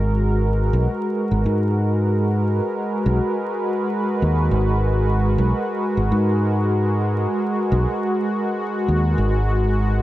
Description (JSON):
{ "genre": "ambient dub", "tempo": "103 BPM", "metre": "4/4", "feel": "straight", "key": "G# minor", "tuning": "A4 = 440 Hz", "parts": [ { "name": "warm analog pad", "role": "sustained chords", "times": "0.0-10.0 s", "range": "G#3 to B4", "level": "-22 LUFS", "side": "equal", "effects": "chorus, tremolo" }, { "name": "fingered electric bass", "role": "bass", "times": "0.0-10.0 s", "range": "G#1 to G#2", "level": "-19 LUFS", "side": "equal", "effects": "none" } ], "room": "moderate echo chamber reverb, RT60 2.3 s", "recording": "vinyl crackle", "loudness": "-18 LUFS", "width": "side -15 dB against mid", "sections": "0.0-10.0 A section", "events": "none", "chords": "0.0 G#m9" }